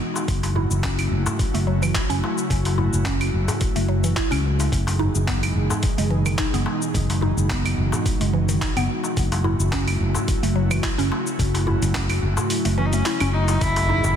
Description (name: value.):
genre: organic downtempo.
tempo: 108 BPM.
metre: 4/4.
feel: swing 54% on 16ths.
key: F# dorian.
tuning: A4 = 440 Hz.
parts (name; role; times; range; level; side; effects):
airy breathy pad; sustained chords; 0.0-14.2 s; B2 to D#5; -27 LUFS; equal; chorus, sidechain pumping.
dusty soul sampler-style drum kit; drums; 0.2-14.1 s; claves, handclaps, hi-hat, shaker; -28 LUFS; equal; overdrive, small room reverb.
darbuka; percussion; 0.2-14.1 s; none; -30 LUFS; left 2 dB; none.
fretless electric bass; bass; 0.3-14.2 s; F#1 to C#2; -22 LUFS; equal; none.
electronic kick drum; drums; 0.3-13.7 s; none; -26 LUFS; equal; overdrive, small room reverb.
mallet-like synth pluck; arpeggios; 0.6-14.0 s; D#3 to E4; -28 LUFS; right 1 dB; chorus, phaser, ping-pong delay.
rich cello; melody; 12.8-14.2 s; C#4 to E4; -23 LUFS; left 1 dB; ping-pong delay.
impact; sound effects; 13.6-14.2 s; none; -29 LUFS; equal; none.
room: light reverb.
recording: dense, heavily limited modern master.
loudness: -19 LUFS.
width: side -8 dB against mid.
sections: 0.0-13.6 A section.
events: kick drops out 12.5-13.6; impact 13.6-14.2.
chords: 0.3 F#m7; 4.7 Emaj7/F#; 9.2 F#m7; 13.6 Emaj7/F#.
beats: | 0.28 0.84 1.39 1.95 | 2.50 3.06 3.62 4.17 | 4.73 5.28 5.84 6.39 | 6.95 7.50 8.06 8.62 | 9.17 9.73 10.28 10.84 | 11.39 11.95 12.50 13.06 | 13.62.